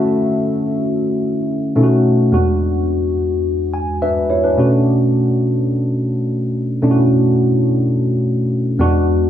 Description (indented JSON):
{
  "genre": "pop",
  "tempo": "106 BPM",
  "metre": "4/4",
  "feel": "straight",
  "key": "unclear",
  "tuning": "A4 = 440 Hz",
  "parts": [
    { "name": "tine electric piano", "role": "solo", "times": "0.0-9.3 s", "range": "E2 to G#5", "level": "-14 LUFS", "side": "equal", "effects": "analog chorus" }
  ],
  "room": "moderate lush hall reverb, RT60 2.5 s",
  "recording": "small room ambience",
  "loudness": "-14 LUFS",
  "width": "side -10 dB against mid",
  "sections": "0.0-4.6 A section; 4.6-9.3 B section",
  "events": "tine electric piano fill 3.5-4.6",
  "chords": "0.0 Dmaj7; 1.8 B9; 2.3 E9; 4.6 Bm9",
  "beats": "| 0.07 0.64 1.20 1.76 | 2.33 2.89 3.45 4.02 | 4.58 5.14 5.71 6.27 | 6.83 7.39 7.96 8.52 | 9.08"
}